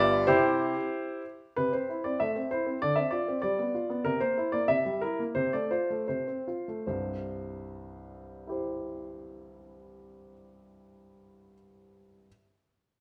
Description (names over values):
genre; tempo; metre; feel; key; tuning
classical-period piano sonatina; 74-98 BPM; 2/4; rubato; C major; A4 = 440 Hz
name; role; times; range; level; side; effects
clear baby grand piano; solo; 0.0-12.3 s; G1 to E5; -30 LUFS; equal; none
room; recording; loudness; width
wet stone room reverb, RT60 1.0 s; none; -30 LUFS; mono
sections
0.0-1.6 A section; 1.6-6.9 B section; 6.9-10.1 C section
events
slowing down 3.4-6.9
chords
0.3 C; 2.2 Am; 2.8 Dm7; 3.4 G7; 4.0 C7; 5.4 F/C; 6.9 C